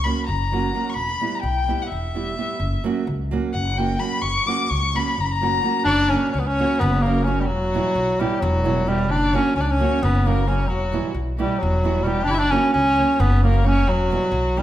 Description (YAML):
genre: balkan folk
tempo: 261 BPM (eighths)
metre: 7/8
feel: straight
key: F# phrygian dominant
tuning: A4 = 440 Hz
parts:
  - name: clear violin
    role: second line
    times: 0.0-14.6 s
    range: F#4 to D6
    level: -25 LUFS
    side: left 3 dB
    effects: none
  - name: nylon-string guitar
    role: accompaniment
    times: 0.0-14.6 s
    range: B2 to G4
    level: -26 LUFS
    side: right 5 dB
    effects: none
  - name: upright bass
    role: bass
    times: 0.0-14.6 s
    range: E1 to C#2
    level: -22 LUFS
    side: equal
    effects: none
  - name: clear clarinet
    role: melody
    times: 5.8-14.6 s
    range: F#3 to E4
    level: -21 LUFS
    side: equal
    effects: none
room: wet recital hall reverb, RT60 1.5 s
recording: recorded in a church or concert hall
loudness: -18 LUFS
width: side -12 dB against mid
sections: 0.0-5.9 A section; 5.9-14.6 B section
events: speeding up 0.0-14.6; violin solo 0.0-5.9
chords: 0.0 F#; 1.0 Em; 2.6 F#; 7.5 Em; 9.1 F#; 10.7 Em; 12.3 F#; 13.9 Em